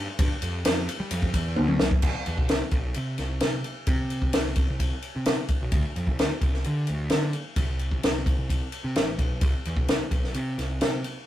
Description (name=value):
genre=math rock and midwest emo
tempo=130 BPM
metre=4/4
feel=straight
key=C major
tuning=A4 = 440 Hz
part: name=fuzz picked electric bass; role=bass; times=0.0-11.0 s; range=A1 to G3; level=-29 LUFS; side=equal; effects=overdrive
part: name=compact cocktail drum kit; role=drums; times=0.2-11.1 s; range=crash cymbal, kick drum, ride cymbal, snare drum, toms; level=-25 LUFS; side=equal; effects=none
room=light reverb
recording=rough rehearsal-room recording, tube saturation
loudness=-24 LUFS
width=side -13 dB against mid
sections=0.0-2.0 A section; 2.0-11.3 B section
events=drum fill 1.6-2.0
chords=none